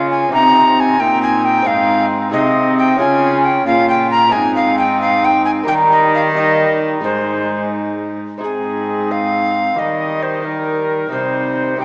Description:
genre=classical, renaissance-style consort dance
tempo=89 BPM (dotted quarters)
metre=6/8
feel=straight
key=unclear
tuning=A4 = 440 Hz
part: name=alto recorder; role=melody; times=0.0-11.8 s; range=Ab4 to Bb5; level=-15 LUFS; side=equal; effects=none
part: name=warm viola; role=second line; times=0.0-11.8 s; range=Eb4 to F4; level=-22 LUFS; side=right 1 dB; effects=none
part: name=bright trombone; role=accompaniment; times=0.0-11.8 s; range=G3 to Db4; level=-22 LUFS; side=equal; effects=none
part: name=lute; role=accompaniment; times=0.0-11.8 s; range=Ab2 to Bb4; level=-20 LUFS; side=equal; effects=none
part: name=rich cello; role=bass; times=0.0-11.8 s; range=Ab2 to Eb3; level=-22 LUFS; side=equal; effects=none
room=wet church reverb, RT60 2.7 s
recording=small speaker sound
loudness=-12 LUFS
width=side -28 dB against mid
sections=0.0-8.4 A section; 8.4-11.8 B section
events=none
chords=0.3 Cm; 1.7 Ab; 3.0 Db; 4.3 Ab; 5.7 Eb; 7.0 Ab; 9.8 Eb; 11.1 Cm

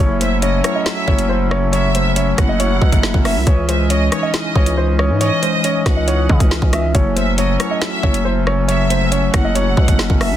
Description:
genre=hip hop, drill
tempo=138 BPM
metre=4/4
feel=half-time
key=unclear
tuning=A4 = 442 Hz
part: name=dark concert grand piano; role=melody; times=0.0-10.4 s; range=B#4 to E5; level=-22 LUFS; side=left 1 dB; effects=none
part: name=mellow tine electric piano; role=accompaniment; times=0.0-10.4 s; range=E3 to F#4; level=-22 LUFS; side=equal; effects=medium stereo tremolo
part: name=accordion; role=sustained chords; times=0.0-10.4 s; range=C#3 to D#5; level=-27 LUFS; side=right 1 dB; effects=none
part: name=growling 808-style bass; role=bass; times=0.0-10.4 s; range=F#1 to C#3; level=-18 LUFS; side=equal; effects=none
part: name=rich studio violin section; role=second line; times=0.2-10.4 s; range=C#5 to F#5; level=-24 LUFS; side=right 1 dB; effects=none
part: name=drill drum kit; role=drums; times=0.2-10.3 s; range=hi-hat, kick drum, rim click, snare drum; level=-17 LUFS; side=equal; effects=soft clipping on snare
room=studio reverb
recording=dense, heavily limited modern master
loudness=-13 LUFS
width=side -11 dB against mid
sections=0.0-10.4 A section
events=none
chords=0.0 F#m7; 3.5 C#madd9; 6.9 F#m7

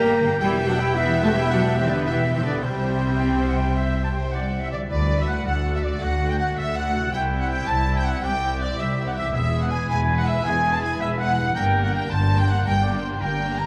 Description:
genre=cinematic, heroic adventure film score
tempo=108 BPM (dotted quarters)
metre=12/8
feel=straight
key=D mixolydian from 4.9 s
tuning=A4 = 440 Hz
part: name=warm studio violin section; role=melody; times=0.0-13.7 s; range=C5 to Bb5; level=-35 LUFS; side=equal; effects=none
part: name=silver concert flute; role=second line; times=0.0-13.7 s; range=C5 to Bb5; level=-34 LUFS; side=equal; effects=none
part: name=warm clarinet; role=second line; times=0.0-4.9 s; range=E5 to A5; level=-34 LUFS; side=equal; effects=none
part: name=warm oboe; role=second line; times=0.0-13.7 s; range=E4 to G5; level=-35 LUFS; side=equal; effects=none
part: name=warm studio violin section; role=second line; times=0.0-13.7 s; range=F#4 to G5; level=-40 LUFS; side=equal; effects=none
part: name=rich symphonic viola section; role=accompaniment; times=0.0-13.7 s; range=G3 to G4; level=-35 LUFS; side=equal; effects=none
part: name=mellow French horn section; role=sustained chords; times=0.0-13.7 s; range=G3 to Bb4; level=-32 LUFS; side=equal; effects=none
part: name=concert harp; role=arpeggios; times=0.0-13.7 s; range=E2 to C6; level=-38 LUFS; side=equal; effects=none
part: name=warm trumpet section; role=stabs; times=0.0-13.7 s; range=G3 to Bb5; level=-30 LUFS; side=equal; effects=none
part: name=rich symphonic cello section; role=bass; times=0.0-13.7 s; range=C2 to Bb3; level=-29 LUFS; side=equal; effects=none
part: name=warm symphonic double bass section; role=bass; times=0.0-13.7 s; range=E1 to D2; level=-28 LUFS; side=equal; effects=none
room=moderate scoring stage reverb, RT60 1.9 s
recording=none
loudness=-22 LUFS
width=mono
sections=0.0-4.9 A section; 4.9-13.7 B section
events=none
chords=0.4 Em; 2.6 C; 4.9 D; 7.1 C; 9.3 E; 11.6 Gm

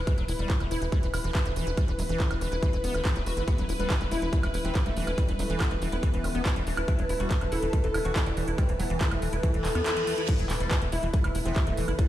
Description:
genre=psychedelic trance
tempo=141 BPM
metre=4/4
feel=straight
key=unclear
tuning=A4 = 440 Hz
part: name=swarming drone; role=sustained chords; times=0.0-12.1 s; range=B4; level=-36 LUFS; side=equal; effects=built-in reverb, vintage 12-bit sampler grit, sidechain pumping
part: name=tight sequencer bass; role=bass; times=0.0-11.9 s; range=D1 to E2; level=-30 LUFS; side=equal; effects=none
part: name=granular cloud pad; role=texture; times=0.0-12.1 s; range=E4 to B5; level=-37 LUFS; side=left 1 dB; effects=built-in reverb, sidechain pumping
part: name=liquid acid bass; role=riff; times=0.1-12.1 s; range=D3 to F#4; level=-36 LUFS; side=moving between left 5 dB and right 4 dB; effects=chorus, auto-pan, sidechain pumping, digital delay
part: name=big-room dance drum kit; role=drums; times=0.1-12.1 s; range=crash cymbal, handclaps, hi-hat, woodblock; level=-35 LUFS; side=right 1 dB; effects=none
part: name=electronic kick drum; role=drums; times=0.1-12.1 s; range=none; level=-26 LUFS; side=equal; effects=none
part: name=oud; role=melody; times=3.5-12.1 s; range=G3 to A4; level=-34 LUFS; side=left 1 dB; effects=phaser, sidechain pumping, digital delay
part: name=reverse cymbal and impact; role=sound effects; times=9.6-12.0 s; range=none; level=-39 LUFS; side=right 2 dB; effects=none
part: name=metallic wobble bass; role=second line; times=11.5-11.6 s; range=B3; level=-44 LUFS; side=left 1 dB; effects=none
room=light reverb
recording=played on a big sound system in a bare room, large studio reverb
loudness=-25 LUFS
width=side -13 dB against mid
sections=0.0-10.3 A section; 10.3-12.1 B section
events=reverse cymbal 9.6-10.3; band accent 9.9; drop 10.3-12.1; impact 10.3-12.0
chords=0.0 E5

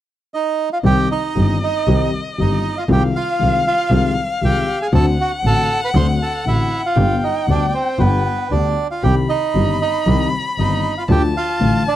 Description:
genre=tango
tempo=117 BPM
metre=4/4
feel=rubato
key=C harmonic minor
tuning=A4 = 439 Hz
part: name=bandoneon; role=melody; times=0.3-12.0 s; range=B3 to C6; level=-20 LUFS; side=right 3 dB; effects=none
part: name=warm violin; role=second line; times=0.8-12.0 s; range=Eb5 to B5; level=-24 LUFS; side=left 3 dB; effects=none
part: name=dark upright piano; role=accompaniment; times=0.8-11.8 s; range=G1 to G4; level=-20 LUFS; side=left 4 dB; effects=none
part: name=clear double bass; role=bass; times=0.8-11.8 s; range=G1 to D2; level=-18 LUFS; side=right 1 dB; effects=none
room=small room reverb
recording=dry, close 1970s-style studio recording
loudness=-15 LUFS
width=side -12 dB against mid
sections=0.8-12.0 A section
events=none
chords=0.0 N.C.; 0.8 Cm; 2.9 Ab6/C; 4.9 D7; 7.0 G; 9.0 Cm; 11.1 Dm

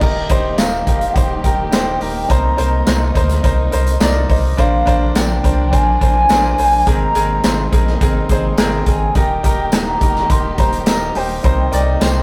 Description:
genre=piano-driven pop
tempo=105 BPM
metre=4/4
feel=straight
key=Eb major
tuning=A4 = 440 Hz
part: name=hollow clarinet-like synth lead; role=melody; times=0.0-12.2 s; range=Eb5 to C6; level=-21 LUFS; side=equal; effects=chorus
part: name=bright grand piano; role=accompaniment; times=0.0-12.2 s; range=Ab2 to D5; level=-23 LUFS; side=equal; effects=none
part: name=warm symphonic string section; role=sustained chords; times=0.0-12.2 s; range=C3 to G4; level=-30 LUFS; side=equal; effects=none
part: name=sub bass with octave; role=bass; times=0.0-12.2 s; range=Eb1 to D2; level=-22 LUFS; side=equal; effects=none
part: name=modern studio drum kit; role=drums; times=0.0-12.2 s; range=crash cymbal, handclaps, hi-hat, kick drum, snare drum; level=-19 LUFS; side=equal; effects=none
part: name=tambourine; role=percussion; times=0.6-12.1 s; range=none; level=-34 LUFS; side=equal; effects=none
room=moderate stone room reverb, RT60 1.0 s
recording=rough rehearsal-room recording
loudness=-15 LUFS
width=mono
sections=0.0-12.2 A section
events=none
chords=0.0 Eb; 2.3 Cm7; 4.6 Bbadd9; 6.9 Abadd9; 9.2 Eb; 11.4 Cm7

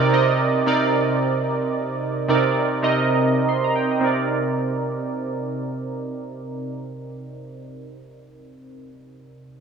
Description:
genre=amapiano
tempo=free time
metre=none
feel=none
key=C minor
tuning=A4 = 441 Hz
part: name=warm analog keys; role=accompaniment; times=0.0-9.6 s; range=C3 to C6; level=-20 LUFS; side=right 2 dB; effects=chorus, low-pass filter
room=moderate spring reverb, RT60 2.2 s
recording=echo-heavy mix, small room ambience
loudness=-19 LUFS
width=side -6 dB against mid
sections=0.0-4.0 A section; 4.0-8.3 B section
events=filter sweep on synth keys 0.0-4.0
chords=0.0 Cm7

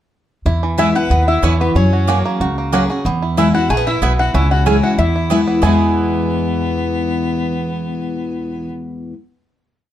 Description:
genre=bluegrass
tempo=186 BPM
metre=4/4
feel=straight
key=E lydian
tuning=A4 = 442 Hz
part: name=picked steel-string acoustic guitar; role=accompaniment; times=0.5-9.1 s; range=E2 to G#4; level=-19 LUFS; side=left 2 dB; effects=none
part: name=bluegrass banjo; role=arpeggios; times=0.5-8.8 s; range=E3 to G#4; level=-23 LUFS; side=right 4 dB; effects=none
part: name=upright bass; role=bass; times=0.5-8.7 s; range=A#1 to F#2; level=-18 LUFS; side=equal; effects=none
part: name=lap resonator guitar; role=melody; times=0.8-8.7 s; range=B4 to G#5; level=-20 LUFS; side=left 2 dB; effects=none
part: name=clear fiddle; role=second line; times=0.8-8.7 s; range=B3 to B4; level=-25 LUFS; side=left 4 dB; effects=none
part: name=mandolin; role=stabs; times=0.8-9.1 s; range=A#3 to G#5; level=-23 LUFS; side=right 7 dB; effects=none
room=moderate studio reverb, RT60 0.5 s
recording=dark, warm production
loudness=-14 LUFS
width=side -11 dB against mid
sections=0.5-5.6 A section; 5.6-8.2 final chord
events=none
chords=0.5 E; 1.8 F#add9; 3.1 E; 4.3 C#m; 5.0 E

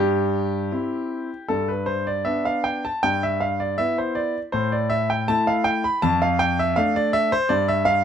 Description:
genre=classical-period piano sonatina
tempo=80 BPM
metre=4/4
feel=rubato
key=C major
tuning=A4 = 440 Hz
part: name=clear concert grand piano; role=solo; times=0.0-8.0 s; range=F2 to B5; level=-20 LUFS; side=equal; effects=none
room=light reverb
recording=dark, warm production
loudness=-20 LUFS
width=side -8 dB against mid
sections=0.0-8.0 A section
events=none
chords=0.0 C/G; 1.5 G; 3.0 Em/G; 4.5 A5; 6.0 Dm/F; 7.5 G5

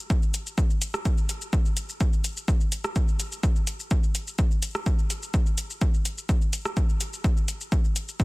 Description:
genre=techno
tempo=126 BPM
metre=4/4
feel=straight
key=none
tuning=none
part: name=deep house drum kit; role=drums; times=0.1-8.2 s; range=hi-hat, rim click, shaker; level=-32 LUFS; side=equal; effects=studio ambience, soft clipping on snare
part: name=electronic kick drum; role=drums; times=0.1-8.2 s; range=none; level=-23 LUFS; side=equal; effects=overdrive, studio ambience
room=little or no reverb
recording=dense, heavily limited modern master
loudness=-23 LUFS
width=side -24 dB against mid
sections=0.0-8.2 A section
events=none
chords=none

